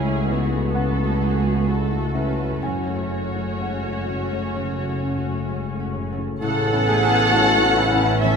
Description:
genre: cinematic, emotional film score for orchestra.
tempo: 61-67 BPM.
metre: 4/4.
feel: rubato.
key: F# minor.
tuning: A4 = 436 Hz.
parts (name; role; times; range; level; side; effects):
muted studio violin section; melody; 0.0-8.4 s; F#4 to F#5; -26 LUFS; left 2 dB; none.
muted studio violin section; second line; 0.0-8.4 s; F#4 to C#5; -27 LUFS; equal; none.
dark grand piano; accompaniment; 0.0-8.4 s; C#2 to G#5; -27 LUFS; left 1 dB; none.
muted studio viola section; accompaniment; 0.0-8.4 s; C#3 to F#4; -28 LUFS; right 2 dB; none.
concert harp; arpeggios; 0.0-8.4 s; F#2 to F#4; -28 LUFS; left 7 dB; none.
muted studio cello section; bass; 0.0-8.4 s; C#2 to A4; -28 LUFS; right 4 dB; none.
muted studio double bass section; bass; 0.0-8.4 s; F#1 to C#2; -27 LUFS; right 3 dB; none.
room: wet scoring stage reverb, RT60 1.6 s.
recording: none.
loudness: -19 LUFS.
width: side -6 dB against mid.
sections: 0.0-6.4 A section; 6.4-8.4 A section.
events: none.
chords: 0.0 F#m7/C#; 2.6 F#m; 6.4 Aadd9.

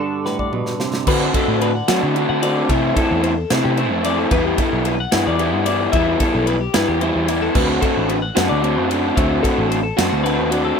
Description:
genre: math rock and midwest emo.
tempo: 74 BPM (dotted quarters).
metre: 6/8.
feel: straight.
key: unclear.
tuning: A4 = 439 Hz.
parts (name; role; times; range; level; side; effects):
twangy electric guitar; accompaniment; 0.0-2.7 s; G2 to F#4; -25 LUFS; right 6 dB; analog chorus, plate reverb.
twelve-string electric guitar; arpeggios; 0.0-10.8 s; F#4 to F#5; -24 LUFS; left 8 dB; plate reverb.
modern studio drum kit; drums; 0.3-10.6 s; crash cymbal, kick drum, ride cymbal, snare drum, toms; -23 LUFS; right 1 dB; none.
raw garage guitar; riff; 1.1-10.8 s; D3 to F#4; -18 LUFS; equal; overdrive.
picked electric bass; bass; 1.1-10.7 s; A1 to F#3; -23 LUFS; equal; none.
room: light reverb.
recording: rough home demo mix.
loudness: -16 LUFS.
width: side -6 dB against mid.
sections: 0.0-1.1 A section; 1.1-10.8 B section.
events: break 0.0-1.1; drum fill 0.3-1.1.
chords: 0.0 Gmaj7; 1.1 D6; 2.7 Am7; 4.3 Em7; 7.6 D13.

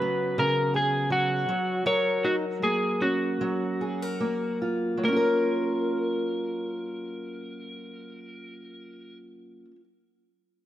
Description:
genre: acoustic pop.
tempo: 71-83 BPM.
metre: 4/4.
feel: swing 55% on 16ths.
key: F# major.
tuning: A4 = 440 Hz.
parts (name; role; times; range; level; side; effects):
electric slide guitar; melody; 0.0-9.2 s; F#4 to C#5; -28 LUFS; equal; none.
fingerpicked steel-string acoustic guitar; accompaniment; 0.0-9.8 s; C#3 to A#4; -28 LUFS; equal; none.
room: moderate plate reverb, RT60 2.6 s.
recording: none.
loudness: -24 LUFS.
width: side -12 dB against mid.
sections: 0.0-5.0 A section; 5.0-8.4 B section.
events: slowing down 0.0-5.0.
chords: 0.0 C#7sus4; 1.5 F#; 5.0 F#maj7.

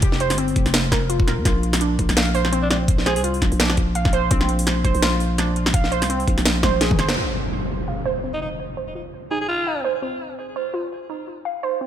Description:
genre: half-time drum and bass.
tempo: 168 BPM.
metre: 4/4.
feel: swing 56% on 16ths, half-time.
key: F dorian.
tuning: A4 = 439 Hz.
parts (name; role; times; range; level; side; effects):
warbly dusty pluck; arpeggios; 0.0-11.9 s; C4 to F5; -25 LUFS; right 2 dB; chorus, digital delay.
growling 808-style bass; bass; 0.0-7.2 s; Eb1 to F2; -22 LUFS; equal; none.
drum and bass drum kit; drums; 0.0-7.2 s; hi-hat, snare drum, toms; -22 LUFS; equal; low-pass filter on hats, low-pass filter on snare, low-pass filter on toms, low-pass filter on room.
electronic kick drum; drums; 0.0-7.0 s; none; -20 LUFS; equal; none.
raspy alto saxophone; melody; 2.6-3.2, 8.3-9.8 s; D4 to Ab4; -28 LUFS; equal; digital delay.
impact; sound effects; 7.2-8.6 s; none; -29 LUFS; equal; none.
room: light reverb, digital ambience.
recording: none.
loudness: -18 LUFS.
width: side -10 dB against mid.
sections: 0.0-7.2 A section; 7.2-11.9 B section.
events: drop 0.0-7.2; drum fill 6.6-7.2; band accent 7.1; impact 7.2-8.6; filter sweep on synth pluck 7.2-11.9.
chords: 0.0 F5; 1.5 Bbsus2; 7.2 F5.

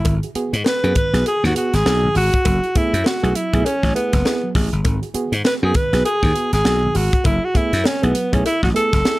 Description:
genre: funk.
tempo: 100 BPM.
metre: 4/4.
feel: swing 60% on 16ths.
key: F# dorian.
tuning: A4 = 439 Hz.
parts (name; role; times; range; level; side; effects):
breathy alto saxophone; melody; 0.0-9.2 s; B3 to B4; -20 LUFS; equal; none.
slap bass; bass; 0.0-9.0 s; F#1 to G#2; -19 LUFS; equal; none.
crisp fusion drum kit; drums; 0.0-9.2 s; hi-hat, kick drum, snare drum; -21 LUFS; equal; none.
cowbell; percussion; 0.0-9.2 s; none; -29 LUFS; left 6 dB; none.
mellow reed electric piano; stabs; 0.1-9.2 s; G#2 to G#4; -25 LUFS; right 3 dB; fast tremolo, tape echo.
room: little or no reverb.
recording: none.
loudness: -16 LUFS.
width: side -19 dB against mid.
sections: 0.0-9.2 A section.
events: alto saxophone solo 0.0-9.2.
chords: 0.1 G#m7; 2.5 F#m11; 4.9 G#m7; 7.3 F#m11.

